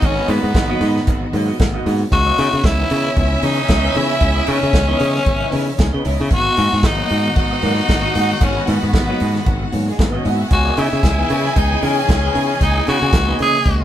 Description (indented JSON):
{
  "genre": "disco",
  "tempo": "114 BPM",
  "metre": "4/4",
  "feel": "swing 56% on 16ths",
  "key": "unclear",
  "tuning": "A4 = 440 Hz",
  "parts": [
    { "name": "raspy tenor saxophone", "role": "melody", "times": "0.0-13.8 s", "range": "B3 to G#4", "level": "-20 LUFS", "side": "left 1 dB", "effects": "none" },
    { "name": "warm symphonic violin section", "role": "second line", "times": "0.0-13.8 s", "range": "G#3 to G#5", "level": "-24 LUFS", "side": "equal", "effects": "none" },
    { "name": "semi-hollow electric guitar", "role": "accompaniment", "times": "0.0-13.8 s", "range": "E4 to F#5", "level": "-27 LUFS", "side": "right 4 dB", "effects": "phaser" },
    { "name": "tine electric piano", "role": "accompaniment", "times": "0.0-13.8 s", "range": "G#2 to D#4", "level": "-29 LUFS", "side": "left 3 dB", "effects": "none" },
    { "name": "dark studio string section", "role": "sustained chords", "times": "0.0-13.8 s", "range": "C#3 to D#5", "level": "-26 LUFS", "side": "equal", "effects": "none" },
    { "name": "modern bright fingered electric bass", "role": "bass", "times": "0.0-13.8 s", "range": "G#1 to C#3", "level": "-19 LUFS", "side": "equal", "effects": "none" },
    { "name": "warm soul drum kit", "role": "drums", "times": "0.0-13.8 s", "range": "hi-hat, kick drum, snare drum", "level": "-19 LUFS", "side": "equal", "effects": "none" }
  ],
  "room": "moderate studio reverb, RT60 0.6 s",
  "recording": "band playing live in one room",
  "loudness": "-14 LUFS",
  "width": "side -11 dB against mid",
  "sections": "0.0-13.8 A section",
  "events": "none",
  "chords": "0.0 G#m7; 2.1 C#m9; 6.3 G#m7; 10.5 C#m9"
}